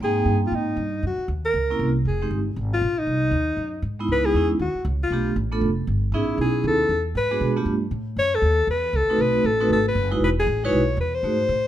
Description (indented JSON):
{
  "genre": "jazz, small-group swing and bop",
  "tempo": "235 BPM",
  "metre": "4/4",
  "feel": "swing 59% on 8ths",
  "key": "C# minor from 4.1 s",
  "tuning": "A4 = 440 Hz",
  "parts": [
    { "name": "clear alto saxophone", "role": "melody", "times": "0.0-11.7 s", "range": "Eb4 to C#5", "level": "-23 LUFS", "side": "left 2 dB", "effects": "none" },
    { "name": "vibraphone with medium mallets", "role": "accompaniment", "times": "0.0-11.4 s", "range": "Ab3 to G5", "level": "-24 LUFS", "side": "right 2 dB", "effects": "none" },
    { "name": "upright bass", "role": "bass", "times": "0.0-11.7 s", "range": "E1 to B2", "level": "-25 LUFS", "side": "equal", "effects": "none" }
  ],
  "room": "light reverb",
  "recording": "minimal, uncompressed stereo recording",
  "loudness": "-20 LUFS",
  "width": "side -12 dB against mid",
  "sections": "0.0-4.1 A section; 4.1-11.7 B section",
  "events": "none",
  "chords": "0.0 Abmaj9; 1.0 Gb(#11); 2.1 Fmadd9; 3.1 Ab7; 4.1 C#m7; 5.1 G9; 6.1 Amaj9#11; 7.2 G#m7b5; 7.7 Gsus2; 8.2 F#m7; 9.2 B7b9; 10.2 E"
}